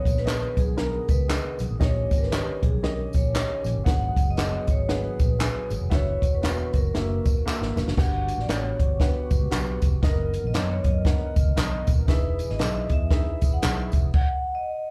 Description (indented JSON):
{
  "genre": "uptempo 1960s-style soul",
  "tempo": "117 BPM",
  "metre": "4/4",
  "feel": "swing 59% on 8ths",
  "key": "B major",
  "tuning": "A4 = 440 Hz",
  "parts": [
    { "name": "vibraphone with medium mallets", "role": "melody", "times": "0.0-14.9 s", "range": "G#4 to F#5", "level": "-33 LUFS", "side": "equal", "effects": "slapback echo, analog delay" },
    { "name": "warm upright piano", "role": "accompaniment", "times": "0.0-13.9 s", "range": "G2 to G#5", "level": "-38 LUFS", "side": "equal", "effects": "slapback echo" },
    { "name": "tonewheel organ", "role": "sustained chords", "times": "0.0-14.1 s", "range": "D#3 to A#4", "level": "-40 LUFS", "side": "equal", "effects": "slow rotary speaker, overdrive, chorus vibrato" },
    { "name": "vintage muted fingered electric bass", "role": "bass", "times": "0.1-14.1 s", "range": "D#1 to F#2", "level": "-29 LUFS", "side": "equal", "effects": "none" },
    { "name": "compact cocktail drum kit", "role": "drums", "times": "0.1-14.3 s", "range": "crash cymbal, hi-hat, kick drum, snare drum", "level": "-26 LUFS", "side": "equal", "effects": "none" },
    { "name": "tambourine and handclaps", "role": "percussion", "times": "0.1-14.0 s", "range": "none", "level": "-37 LUFS", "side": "equal", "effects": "slapback echo" }
  ],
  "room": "light reverb",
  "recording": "live gig heard through the venue's PA, club reverb",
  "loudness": "-24 LUFS",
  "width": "mono",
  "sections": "0.0-8.0 A section; 8.0-14.9 B section",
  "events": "drum fill 7.5-8.0",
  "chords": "0.0 B6; 1.8 D#7; 3.9 G#m7; 5.9 F#7sus4; 6.9 F#7; 8.0 Gmaj7; 10.0 Bmaj7/F#; 12.1 Emaj7; 14.1 N.C."
}